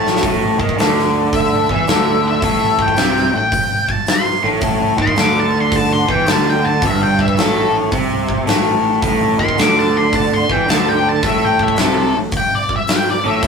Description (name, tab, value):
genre	blues rock power trio and southern rock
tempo	109 BPM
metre	4/4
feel	swing 67% on 8ths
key	A minor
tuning	A4 = 440 Hz
part	octave-fuzz lead guitar	melody	0.0-13.4 s	A4 to D6	-18 LUFS	left 1 dB	distortion
part	raw garage guitar	riff	0.0-13.5 s	G2 to E3	-16 LUFS	equal	overdrive
part	growling fingered electric bass	bass	0.0-13.5 s	G1 to E2	-23 LUFS	right 1 dB	overdrive
part	huge arena drum kit	drums	0.1-13.5 s	hi-hat, kick drum, snare drum	-18 LUFS	equal	none
room	wet small room reverb, RT60 0.6 s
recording	rough rehearsal-room recording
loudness	-13 LUFS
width	side -5 dB against mid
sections	0.0-13.5 A section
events	drum fill 0.0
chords	0.0 Am